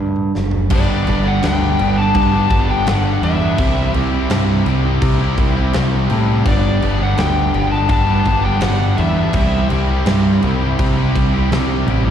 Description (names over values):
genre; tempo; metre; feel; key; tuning
quiet-loud alternative rock; 83 BPM; 4/4; straight; G major; A4 = 440 Hz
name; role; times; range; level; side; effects
electric guitar through a small old amp; arpeggios; 0.0-0.7 s; D3 to A4; -24 LUFS; right 6 dB; wide subtle chorus, slapback echo
growling picked electric bass; bass; 0.0-12.1 s; F#1 to C3; -17 LUFS; equal; overdrive
big rock drum kit; drums; 0.2-12.0 s; crash cymbal, kick drum, snare drum, toms; -22 LUFS; equal; none
cranked stack guitar; riff; 0.7-12.1 s; G2 to G4; -21 LUFS; left 11 dB; overdrive, slapback echo
thick fuzz guitar; riff; 0.7-12.1 s; G2 to G4; -21 LUFS; right 10 dB; distortion, slapback echo
smooth overdriven lead guitar; melody; 0.8-9.7 s; D5 to A5; -22 LUFS; left 3 dB; plate reverb, slapback echo, analog delay
room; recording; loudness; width
light reverb; live gig heard through the venue's PA, recital hall reverb; -13 LUFS; side -9 dB against mid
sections
0.7-12.1 A section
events
drum fill 0.0-0.7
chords
0.0 Dsus4; 0.7 G; 3.6 C; 6.5 G; 9.3 C